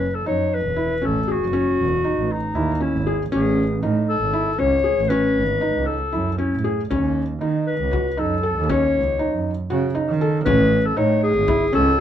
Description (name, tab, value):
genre	contemporary instrumental, chamber music in an uneven meter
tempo	235 BPM (eighths)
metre	7/8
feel	straight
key	unclear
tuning	A4 = 435 Hz
part	mellow clarinet	melody	0.0-12.0 s	D#4 to C#5	-22 LUFS	left 3 dB	none
part	felt-muted upright piano	arpeggios	0.0-11.9 s	C#4 to A4	-23 LUFS	equal	none
part	rich double bass	bass	0.0-12.0 s	E1 to D#3	-23 LUFS	right 3 dB	none
part	frame drum	percussion	6.9-11.9 s	none	-26 LUFS	left 2 dB	none
room	light reverb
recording	dark, warm production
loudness	-18 LUFS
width	side -10 dB against mid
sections	0.0-12.0 A section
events	none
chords	0.0 F#m7; 3.3 Amaj7; 6.9 D#m7; 10.5 Amaj7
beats	0.01 0.26 0.52 0.78 1.03 1.29 | 1.54 1.80 2.05 2.30 2.56 2.81 3.06 | 3.32 3.57 3.83 4.08 4.33 4.59 4.84 | 5.10 5.36 5.62 5.87 6.13 6.39 6.65 | 6.91 7.16 7.42 7.67 7.93 8.19 8.44 | 8.70 8.95 9.20 9.46 9.71 9.96 10.21 | 10.47 10.72 10.97 11.23 11.48 11.74 11.99